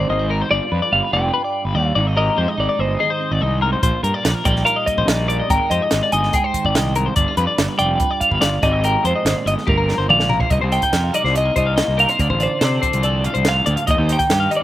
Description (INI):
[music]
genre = math rock and midwest emo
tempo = 144 BPM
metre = 4/4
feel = straight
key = C minor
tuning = A4 = 440 Hz
[part]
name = twelve-string electric guitar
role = melody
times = 0.0-14.6 s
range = Bb4 to Ab5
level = -20 LUFS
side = right 1 dB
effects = warbly pitch drift, slapback echo
[part]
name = twelve-string electric guitar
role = accompaniment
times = 0.0-14.6 s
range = G2 to B4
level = -27 LUFS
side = right 6 dB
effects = slapback echo
[part]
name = twelve-string electric guitar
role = arpeggios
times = 0.0-14.6 s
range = G4 to G5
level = -22 LUFS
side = left 5 dB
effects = slapback echo
[part]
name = fuzz fingered electric bass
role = bass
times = 0.0-14.5 s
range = F1 to C3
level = -21 LUFS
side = equal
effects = overdrive
[part]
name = compact cocktail drum kit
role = drums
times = 3.8-14.6 s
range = hi-hat, kick drum, snare drum, toms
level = -22 LUFS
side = right 1 dB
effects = none
[sound]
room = little or no reverb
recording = recorded outdoors, with no room sound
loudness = -15 LUFS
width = side -14 dB against mid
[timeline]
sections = 0.0-10.5 A section; 10.5-14.6 B section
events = drum fill 9.7-10.5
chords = 0.0 Abmaj7; 0.5 G7; 2.0 Abmaj7; 3.8 Bb; 4.5 Ebmaj7/Bb; 5.5 Abmaj7; 7.2 G7; 8.6 Abmaj7; 9.7 Gm7; 10.5 Cm7; 12.2 Dm7; 13.9 Eb